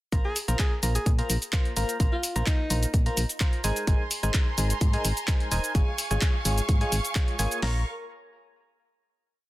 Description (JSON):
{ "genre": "piano house", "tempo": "128 BPM", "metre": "4/4", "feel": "straight", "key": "Bb minor", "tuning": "A4 = 440 Hz", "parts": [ { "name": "barking FM electric piano", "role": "riff", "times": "0.1-7.8 s", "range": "Ab3 to Bb5", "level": "-32 LUFS", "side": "equal", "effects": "chorus, tremolo, sidechain pumping, tape echo" }, { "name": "solid FM bass", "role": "bass", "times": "0.1-7.8 s", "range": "Eb1 to Bb2", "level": "-27 LUFS", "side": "equal", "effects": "sidechain pumping" }, { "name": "house drum kit", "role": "drums", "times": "0.1-7.7 s", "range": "hi-hat, kick drum, snare drum", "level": "-24 LUFS", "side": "equal", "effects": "none" }, { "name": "punchy analog drum machine", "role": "drums", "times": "0.1-7.6 s", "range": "cabasa, handclaps, hi-hat", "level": "-30 LUFS", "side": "equal", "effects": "none" }, { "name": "breathy alto saxophone", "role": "melody", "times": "0.2-2.9 s", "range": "Eb4 to Ab4", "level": "-34 LUFS", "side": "equal", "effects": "tape echo" }, { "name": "warm studio violin section", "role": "sustained chords", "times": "3.9-7.8 s", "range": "Bb4 to Db6", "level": "-35 LUFS", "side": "right 2 dB", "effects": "sidechain pumping" } ], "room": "little or no reverb", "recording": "dense, heavily limited modern master", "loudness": "-23 LUFS", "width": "side -17 dB against mid", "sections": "0.1-7.6 drop; 7.6-9.5 final chord", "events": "drop 0.1-7.6", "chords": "0.1 Bbsus2; 3.6 Abadd9; 5.8 Db/Ab; 7.6 Bbm", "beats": "| 0.12 0.59 1.06 1.53 | 2.00 2.47 2.94 3.41 | 3.88 4.34 4.81 5.28 | 5.75 6.22 6.69 7.16 | 7.62" }